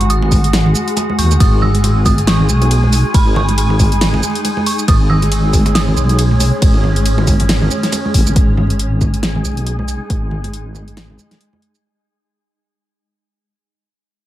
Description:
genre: deep dubstep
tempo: 138 BPM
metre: 4/4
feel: swing 57% on 16ths, half-time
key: G# minor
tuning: A4 = 436 Hz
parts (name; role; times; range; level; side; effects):
- dark detuned synth bell; melody; 0.0-7.9 s; B5 to E6; -23 LUFS; right 3 dB; chorus, dub echo
- granular cloud pad; sustained chords; 0.0-11.9 s; G#3 to F#4; -24 LUFS; equal; built-in reverb
- deep soft wobble bass; bass; 0.0-11.2 s; G#1 to D#2; -14 LUFS; equal; chorus
- deep house drum kit; drums; 0.0-11.8 s; hi-hat, ride cymbal, shaker, snare drum; -20 LUFS; equal; none
- congas; percussion; 0.0-11.6 s; none; -21 LUFS; right 2 dB; none
- wind-like tuned noise texture; texture; 0.0-11.8 s; G#4 to G#5; -24 LUFS; equal; built-in reverb
- electronic kick drum; drums; 0.3-10.2 s; none; -13 LUFS; equal; none
room: light reverb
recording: vinyl crackle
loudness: -11 LUFS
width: side -14 dB against mid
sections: 0.0-8.4 A section; 8.4-11.8 B section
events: drop 0.0-8.4; fade-out 8.4-11.8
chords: 0.0 G#5

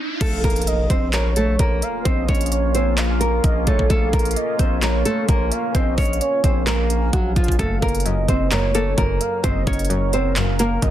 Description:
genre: hip hop, trap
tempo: 130 BPM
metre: 4/4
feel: half-time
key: Bb harmonic minor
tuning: A4 = 441 Hz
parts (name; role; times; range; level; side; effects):
- riser and impact; sound effects; 0.0-2.1 s; none; -30 LUFS; right 1 dB; none
- nylon-string guitar; melody; 0.2-10.9 s; F3 to Db5; -23 LUFS; right 1 dB; low-pass filter
- warm velvety synth lead; second line; 0.2-10.9 s; Db5 to F5; -27 LUFS; right 3 dB; chorus, digital delay
- deep dark ambient pad; sustained chords; 1.2-10.9 s; Gb3 to Bb4; -28 LUFS; left 1 dB; chorus, built-in reverb
- distorted 808-style bass; bass; 0.2-10.9 s; Gb1 to Bb1; -22 LUFS; equal; distortion
- trap drum kit; drums; 0.2-10.9 s; crash cymbal, handclaps, hi-hat, kick drum; -22 LUFS; equal; overdrive
- string-like resonator pluck; accompaniment; 7.6-10.9 s; Gb2 to Bb3; -26 LUFS; left 2 dB; chorus, low-pass filter
room: little or no reverb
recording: dense, heavily limited modern master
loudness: -17 LUFS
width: side -12 dB against mid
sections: 0.2-10.9 A section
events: riser 0.0; stop 0.0; impact 0.2-2.1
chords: 0.2 Bbm; 7.6 Gb

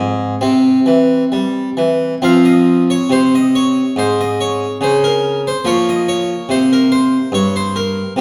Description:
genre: classical, baroque-style suite movement for harpsichord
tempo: 66-73 BPM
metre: 4/4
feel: rubato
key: F minor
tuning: A4 = 440 Hz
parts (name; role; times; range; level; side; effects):
- harpsichord; solo; 0.0-8.2 s; G2 to F5; -14 LUFS; equal; none
room: wet recital hall reverb, RT60 1.4 s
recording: heard from further back in the room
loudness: -14 LUFS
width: mono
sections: 0.0-2.2 A section; 2.2-8.2 B section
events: none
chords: 0.4 C; 2.2 Fm; 5.7 Eb13 (rootless)

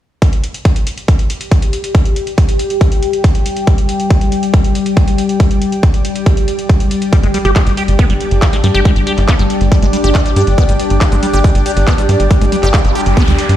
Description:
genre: psychedelic trance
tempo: 139 BPM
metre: 4/4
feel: straight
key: unclear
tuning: A4 = 440 Hz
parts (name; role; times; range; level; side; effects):
- overtone-sweeping drone; sustained chords; 1.3-13.6 s; G3 to G4; -18 LUFS; left 3 dB; chorus, built-in reverb, phaser, sidechain pumping
- electronic kick drum; drums; 0.2-13.3 s; none; -11 LUFS; equal; overdrive
- techno drum kit; drums; 0.2-13.6 s; handclaps, hi-hat; -24 LUFS; equal; none
- granular cloud pad; texture; 1.2-13.6 s; G4 to G5; -23 LUFS; right 1 dB; built-in reverb, sidechain pumping
- liquid acid bass; riff; 7.1-13.3 s; G3 to G4; -19 LUFS; moving between left 2 dB and right 4 dB; phaser, auto-pan, cassette tape, sidechain pumping, digital delay
- tight sequencer bass; bass; 7.2-13.6 s; G1 to G2; -12 LUFS; equal; tube saturation
- noise sweep; sound effects; 12.6-13.6 s; none; -22 LUFS; right 4 dB; none
room: little or no reverb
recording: played on a big sound system in a bare room, stone room reverb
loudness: -10 LUFS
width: side -12 dB against mid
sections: 0.2-13.6 A section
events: fade-in on ambient pad 0.2-13.6; noise sweep 12.6-13.6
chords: 0.2 G5

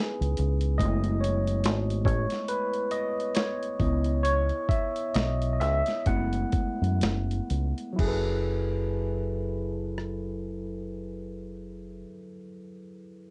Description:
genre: R&B, neo-soul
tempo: 60-71 BPM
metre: 4/4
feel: swing 57% on 16ths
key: F# dorian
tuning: A4 = 440 Hz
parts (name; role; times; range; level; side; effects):
- overdriven tine electric piano; accompaniment; 0.0-13.3 s; F#3 to F#5; -32 LUFS; equal; lush chorus, cassette tape
- deep dub fingered electric bass; bass; 0.2-12.0 s; F#1 to F#2; -31 LUFS; equal; none
- boom bap sampler-style drum kit; drums; 0.2-10.2 s; crash cymbal, hi-hat, kick drum, rim click, snare drum; -32 LUFS; equal; cassette tape
room: light reverb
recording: home recording on cassette, nothing above 10.6 kHz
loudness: -28 LUFS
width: mono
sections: 0.0-8.0 A section; 8.0-12.0 B section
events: tine electric piano solo 0.0-8.0; slowing down 0.8-8.0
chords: 0.0 C#m7; 0.8 F#m11; 3.8 C#m7; 6.1 F#m11

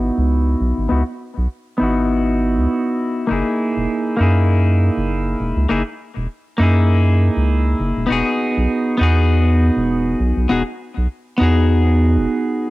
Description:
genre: sunset chillout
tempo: 100 BPM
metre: 4/4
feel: swing 56% on 16ths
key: unclear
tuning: A4 = 440 Hz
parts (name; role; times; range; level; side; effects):
- clean electric guitar; accompaniment; 0.0-12.7 s; A#3 to G#4; -18 LUFS; equal; auto-pan, low-pass filter, cassette tape, analog delay
- round analog bass; bass; 0.0-12.3 s; E1 to F#2; -16 LUFS; equal; none
room: light reverb, digital ambience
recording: home recording on cassette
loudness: -15 LUFS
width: side -18 dB against mid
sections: 0.0-12.7 A section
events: filter sweep on clean electric guitar 0.0-12.7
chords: 0.0 C#m11; 3.3 F#13; 8.1 Emaj9

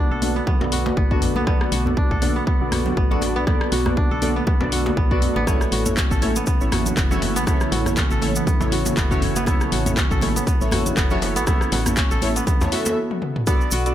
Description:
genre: afro house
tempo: 120 BPM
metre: 4/4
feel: swing 56% on 16ths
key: unclear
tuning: A4 = 440 Hz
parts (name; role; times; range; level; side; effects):
- ethereal airy pad; sustained chords; 0.1-13.9 s; C#3 to F#4; -29 LUFS; right 1 dB; ensemble chorus, built-in reverb, sidechain pumping
- kora; arpeggios; 0.0-13.9 s; B3 to A4; -26 LUFS; right 1 dB; vintage 12-bit sampler grit, sidechain pumping, dub echo
- woody FM bass; bass; 0.0-13.9 s; F#1 to E2; -26 LUFS; equal; sidechain pumping
- warm analog keys; stabs; 0.2-13.9 s; A3 to E5; -26 LUFS; left 1 dB; chorus, phaser, sidechain pumping, low-pass filter, dub echo
- house drum kit; drums; 0.2-13.9 s; handclaps, hi-hat, rim click, toms; -28 LUFS; left 2 dB; none
- congas; percussion; 0.2-12.9 s; none; -29 LUFS; right 3 dB; none
- electronic kick drum; drums; 0.5-13.6 s; none; -20 LUFS; equal; none
- djembe; percussion; 0.6-12.9 s; none; -30 LUFS; left 1 dB; none
- cabasa; percussion; 5.5-13.9 s; none; -31 LUFS; right 1 dB; none
room: light reverb, small room reverb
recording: none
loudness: -18 LUFS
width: side -11 dB against mid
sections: 0.0-13.5 A section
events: filter sweep on synth keys 0.0-13.5; stop 13.0-13.5; drum fill 13.1-13.5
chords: 0.0 Bm7; 5.5 A

